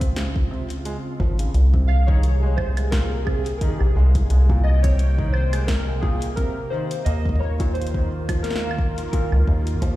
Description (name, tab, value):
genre	IDM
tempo	87 BPM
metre	4/4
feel	swing 56% on 16ths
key	unclear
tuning	A4 = 440 Hz
part	phased analog pad	sustained chords	0.0-10.0 s	C3 to G5	-31 LUFS	equal	phaser, chorus, sidechain pumping
part	deep acid bass	bass	0.0-10.0 s	Ab1 to Eb2	-20 LUFS	equal	tube saturation
part	electro analog drum machine	drums	0.0-10.0 s	hi-hat, snare drum, woodblock	-33 LUFS	equal	studio reverb, ping-pong delay
part	electronic kick drum	drums	0.0-10.0 s	none	-23 LUFS	equal	studio reverb
part	felt-muted upright piano	arpeggios	0.2-10.0 s	Bb2 to Bb3	-31 LUFS	right 1 dB	tape echo
part	warbly lo-fi synth keys	melody	1.9-9.6 s	G4 to F5	-30 LUFS	left 1 dB	chorus, vintage 12-bit sampler grit, ping-pong delay
room	little or no reverb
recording	played on a big sound system in a bare room, stone room reverb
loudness	-18 LUFS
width	side -16 dB against mid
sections	0.0-10.0 A section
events	none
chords	0.0 Dbmaj7; 1.5 Abadd9; 7.1 Ebsus2